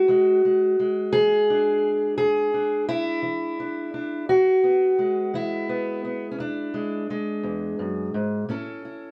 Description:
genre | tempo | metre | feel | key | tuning
acoustic country blues, solo or duo | 57 BPM (dotted quarters) | 12/8 | straight | E mixolydian | A4 = 445 Hz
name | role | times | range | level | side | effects
fingerpicked steel-string acoustic guitar | solo | 0.0-9.1 s | E2 to A4 | -23 LUFS | equal | none
room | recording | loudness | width
moderate studio reverb, RT60 0.8 s | dark, warm production | -23 LUFS | mono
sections
0.0-9.1 A section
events
none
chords
0.0 E7; 8.5 A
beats
| 0.09 1.13 2.18 3.23 | 4.28 5.33 6.38 7.44 | 8.49

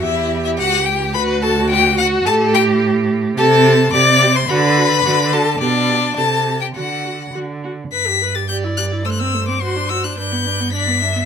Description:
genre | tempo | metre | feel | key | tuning
quick classical-period movement for string quartet | 107 BPM | 2/4 | rubato | G major from 3.4 s | A4 = 440 Hz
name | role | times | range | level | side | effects
clear violin | melody | 0.0-11.3 s | D5 to B6 | -18 LUFS | left 7 dB | none
rich violin | second line | 0.0-11.3 s | D4 to E5 | -20 LUFS | left 2 dB | none
rich viola | accompaniment | 0.0-11.3 s | A3 to B4 | -22 LUFS | right 3 dB | none
rich cello | bass | 0.0-11.3 s | C#2 to D3 | -19 LUFS | right 3 dB | none
room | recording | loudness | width
moderate studio reverb, RT60 0.8 s | none | -14 LUFS | side -7 dB against mid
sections
0.0-7.9 A section; 7.9-11.3 B section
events
none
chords
0.0 C#dim; 1.1 D; 2.3 Gsus2/A; 3.4 Am7/C; 4.5 D; 5.6 G/B; 6.2 Am7/C; 6.8 D; 7.9 G; 8.5 Em/G; 9.1 Am7/G; 9.6 D/G; 10.2 G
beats
| 0.03 0.59 | 1.15 1.71 | 2.26 2.82 | 3.38 3.94 | 4.49 5.05 | 5.61 6.17 | 6.76 7.34 | 7.92 8.49 | 9.05 9.62 | 10.18 10.73

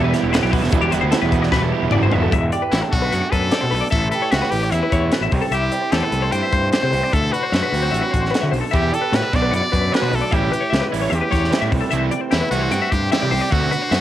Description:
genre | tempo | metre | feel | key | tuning
math rock and midwest emo | 150 BPM | 4/4 | straight | E minor | A4 = 440 Hz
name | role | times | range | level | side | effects
electric guitar through a small old amp | accompaniment | 0.0-14.0 s | E2 to G4 | -26 LUFS | right 7 dB | spring reverb, cassette tape
twelve-string electric guitar | arpeggios | 0.0-14.0 s | F#4 to G5 | -24 LUFS | left 8 dB | tremolo, cassette tape, analog delay
crunchy overdriven guitar | riff | 0.0-2.3, 8.7-14.0 s | D3 to G4 | -24 LUFS | right 9 dB | cassette tape
fuzz fingered electric bass | bass | 0.0-14.0 s | E1 to D3 | -22 LUFS | left 1 dB | overdrive
crisp fusion drum kit | drums | 0.1-14.0 s | hi-hat, kick drum, snare drum, toms | -22 LUFS | equal | cassette tape
brilliant trumpet | melody | 2.7-14.0 s | E4 to D5 | -22 LUFS | left 1 dB | cassette tape
room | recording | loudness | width
light reverb | home recording on cassette | -16 LUFS | side -12 dB against mid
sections
0.0-2.3 A section; 2.3-14.0 B section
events
drum fill 1.5-2.3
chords
0.0 Em7; 2.3 Em9; 2.9 Bm7; 3.9 A7; 5.3 C6; 7.1 D7; 8.7 Em9; 9.3 Bm7; 10.3 A7; 11.7 C6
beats
0.33 | 0.73 1.13 1.53 1.93 | 2.33 2.73 3.13 3.53 | 3.93 4.33 4.73 5.13 | 5.53 5.93 6.33 6.73 | 7.13 7.53 7.93 8.33 | 8.73 9.13 9.53 9.93 | 10.33 10.72 11.12 11.52 | 11.92 12.32 12.72 13.12 | 13.52 13.92

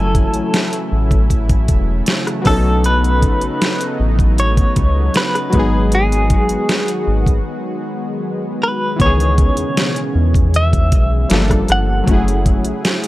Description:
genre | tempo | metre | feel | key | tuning
contemporary R&B | 78 BPM | 4/4 | straight | C# minor | A4 = 439 Hz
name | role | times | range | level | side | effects
direct-recorded clean electric guitar | melody | 0.0-13.1 s | G#4 to F#5 | -20 LUFS | equal | tremolo, tape echo
warm analog keys | accompaniment | 0.0-13.1 s | D#3 to G#5 | -22 LUFS | left 2 dB | chorus
lush unison pad | sustained chords | 0.0-13.1 s | B2 to G#4 | -24 LUFS | equal | chorus
round analog bass | bass | 0.0-12.7 s | E1 to E2 | -16 LUFS | equal | none
smooth R&B drum kit | drums | 0.1-13.1 s | hi-hat, kick drum, rim click, snare drum | -16 LUFS | equal | none
room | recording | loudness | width
little or no reverb | dry, gritty hardware recording | -13 LUFS | side -16 dB against mid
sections
0.0-13.1 A section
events
break 7.5-9.0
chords
0.0 F#m9; 2.5 B9; 5.5 G#m7; 9.0 C#m9; 11.3 Gm9; 12.1 F#m9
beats
0.53 1.30 2.07 | 2.84 3.61 4.38 5.15 | 5.92 6.69 7.46 8.23 | 8.99 9.76 10.53 11.30 | 12.07 12.84

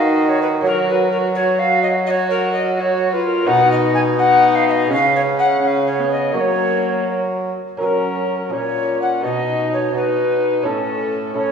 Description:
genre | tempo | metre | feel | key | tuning
classical, renaissance-style consort dance | 84 BPM (dotted quarters) | 6/8 | straight | unclear | A4 = 439 Hz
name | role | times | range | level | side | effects
mellow alto recorder | melody | 0.0-11.5 s | A4 to Ab5 | -18 LUFS | left 2 dB | none
lute | accompaniment | 0.0-11.5 s | A2 to Db5 | -24 LUFS | right 2 dB | none
warm viola | accompaniment | 0.0-11.5 s | Bb3 to Gb4 | -24 LUFS | right 1 dB | none
clear bassoon | bass | 0.0-11.5 s | A2 to Gb3 | -20 LUFS | equal | none
room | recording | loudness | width
wet concert hall reverb, RT60 2.2 s | recorded in a church or concert hall, studio reverb | -15 LUFS | side -6 dB against mid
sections
0.0-7.8 A section; 7.8-11.5 B section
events
none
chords
0.0 Ebm; 0.6 Gb; 3.5 Cb; 4.9 Db5; 6.4 Gb; 9.2 Cb; 10.7 A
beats
| 0.65 1.35 | 2.06 2.77 | 3.48 4.19 | 4.91 5.63 | 6.35 7.08 | 7.81 8.52 | 9.24 9.95 | 10.66 11.37

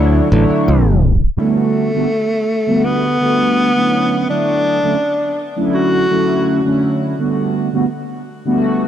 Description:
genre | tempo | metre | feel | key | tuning
vaporwave | 83 BPM | 4/4 | straight | unclear | A4 = 440 Hz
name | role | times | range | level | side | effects
breathy tenor saxophone | melody | 0.0-6.8 s | A3 to F#4 | -17 LUFS | equal | tape echo
mellow synth brass | accompaniment | 0.0-8.9 s | D3 to C#5 | -16 LUFS | right 1 dB | analog chorus, tape echo
modern bright fingered electric bass | bass | 0.0-1.1 s | A1 to D2 | -12 LUFS | equal | none
room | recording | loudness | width
moderate lush hall reverb, RT60 2.4 s | tape stop | -13 LUFS | side -10 dB against mid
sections
0.0-1.4 A section; 1.4-8.9 B section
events
tape stop 0.7-1.4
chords
0.0 Dmaj7; 1.4 Gmaj9; 3.9 Dmaj7; 7.2 Gmaj9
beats
0.68 | 1.41 2.13 2.85 3.57 | 4.30 5.02 5.74 6.46 | 7.19 7.91 8.63

